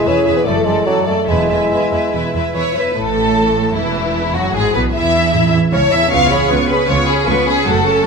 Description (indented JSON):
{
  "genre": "classical, dramatic, fast romantic movement for symphony orchestra",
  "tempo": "139-156 BPM",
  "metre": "4/4",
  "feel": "rubato",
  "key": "A major",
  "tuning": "A4 = 443 Hz",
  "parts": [
    { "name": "warm symphonic violin section", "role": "melody", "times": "0.0-8.1 s", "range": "E4 to C#6", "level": "-23 LUFS", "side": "left 4 dB", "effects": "none" },
    { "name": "warm symphonic violin section", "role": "second line", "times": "0.0-8.1 s", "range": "E4 to E#5", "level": "-17 LUFS", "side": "left 1 dB", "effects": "none" },
    { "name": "mellow bassoon", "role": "accompaniment", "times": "0.0-2.6 s", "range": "F#3 to C#4", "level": "-17 LUFS", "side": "right 2 dB", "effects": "none" },
    { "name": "warm studio viola section", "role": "accompaniment", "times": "0.0-8.1 s", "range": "E3 to A4", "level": "-21 LUFS", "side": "right 2 dB", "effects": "none" },
    { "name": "concert harp", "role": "arpeggios", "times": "0.0-8.1 s", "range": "E2 to D5", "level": "-23 LUFS", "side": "left 8 dB", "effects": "none" },
    { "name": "rich symphonic cello section", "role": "bass", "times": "0.1-8.0 s", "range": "E2 to E3", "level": "-22 LUFS", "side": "right 5 dB", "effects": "none" },
    { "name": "warm symphonic double bass section", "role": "bass", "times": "0.5-8.0 s", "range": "E1 to E2", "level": "-22 LUFS", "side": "right 4 dB", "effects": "none" },
    { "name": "timpani", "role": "percussion", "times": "5.3-5.9 s", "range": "A2", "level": "-26 LUFS", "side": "equal", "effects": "none" }
  ],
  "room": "wet concert hall reverb, RT60 2.0 s",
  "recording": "none",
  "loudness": "-12 LUFS",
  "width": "side -4 dB against mid",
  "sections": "0.0-3.0 A section; 3.0-8.1 B section",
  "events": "none",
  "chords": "0.5 D/F#; 1.3 E; 3.0 A; 4.5 E7/G#; 5.3 A/E; 6.1 C#7",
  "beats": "0.06 0.45 0.86 | 1.27 1.71 2.13 2.55 | 2.96 3.36 3.75 4.14 | 4.54 4.95 5.34 5.73 | 6.12 6.51 6.89 7.28 | 7.67 8.06"
}